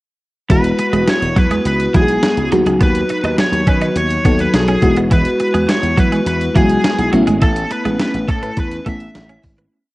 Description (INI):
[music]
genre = 1980s-style pop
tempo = 104 BPM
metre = 4/4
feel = straight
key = E major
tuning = A4 = 440 Hz
[part]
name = smooth overdriven lead guitar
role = melody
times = 0.5-9.4 s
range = G#4 to E5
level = -20 LUFS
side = equal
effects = cassette tape
[part]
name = FM electric piano with soft pad layer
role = accompaniment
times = 0.5-9.7 s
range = F#3 to A4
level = -18 LUFS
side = left 1 dB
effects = chorus, cassette tape
[part]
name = twelve-string electric guitar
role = riff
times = 0.5-9.7 s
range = E3 to D#4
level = -22 LUFS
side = right 2 dB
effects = analog chorus, cassette tape
[part]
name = slap bass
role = bass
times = 0.5-9.7 s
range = E1 to E3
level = -20 LUFS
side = equal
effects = none
[part]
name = clean 12-bit digital drum machine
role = drums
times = 0.5-9.7 s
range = hi-hat, kick drum, snare drum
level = -17 LUFS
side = equal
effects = cassette tape
[sound]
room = moderate spring reverb, RT60 1.7 s, digital ambience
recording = home recording on cassette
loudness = -12 LUFS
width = side -19 dB against mid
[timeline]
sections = 0.5-9.7 verse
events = fade-out 7.4-9.7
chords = 0.5 Eadd9; 2.5 B; 4.8 Eadd9; 7.1 Aadd9